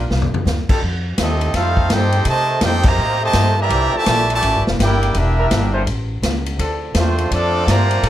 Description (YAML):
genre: jazz, big band swing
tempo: 166 BPM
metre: 4/4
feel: swing 64% on 8ths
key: unclear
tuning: A4 = 440 Hz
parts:
  - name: brilliant trumpet section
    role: melody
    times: 0.0-8.1 s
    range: A3 to Bb5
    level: -19 LUFS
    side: right 1 dB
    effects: none
  - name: muted trombone section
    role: second line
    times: 0.0-8.1 s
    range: Bb2 to G4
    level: -23 LUFS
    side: right 2 dB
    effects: none
  - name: upright bass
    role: bass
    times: 0.0-8.1 s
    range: E1 to C3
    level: -19 LUFS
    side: equal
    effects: none
  - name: swinging big-band drum kit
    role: drums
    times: 0.1-8.1 s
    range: crash cymbal, hi-hat, kick drum, ride cymbal, snare drum, toms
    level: -20 LUFS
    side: equal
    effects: none
  - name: bright trombone section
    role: sustained chords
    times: 0.7-8.1 s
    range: Bb2 to C5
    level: -26 LUFS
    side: left 1 dB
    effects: none
room: light reverb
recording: none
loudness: -15 LUFS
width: side -12 dB against mid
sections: 0.0-8.1 A section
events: drum fill 0.1-0.5; band accent 2.8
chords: 0.1 Csus2; 0.8 F9; 3.7 C9; 5.1 Em7b5; 5.9 A; 6.6 Dm7